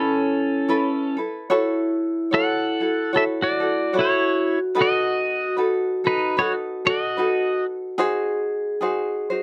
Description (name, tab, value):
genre	Hawaiian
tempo	74 BPM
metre	4/4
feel	swing 60% on 8ths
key	F# minor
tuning	A4 = 440 Hz
part	pedal steel guitar	melody	0.0-7.7 s	C#4 to F#5	-24 LUFS	equal	none
part	vibraphone with medium hard mallets	second line	0.0-9.4 s	E4 to G#4	-28 LUFS	equal	none
part	tenor ukulele	accompaniment	0.0-9.4 s	D#4 to C#5	-27 LUFS	equal	none
room	light reverb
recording	none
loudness	-22 LUFS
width	mono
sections	0.0-1.5 A section; 1.5-9.4 B section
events	none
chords	0.0 Aadd9; 1.5 F#m7; 4.8 B7; 8.0 G#7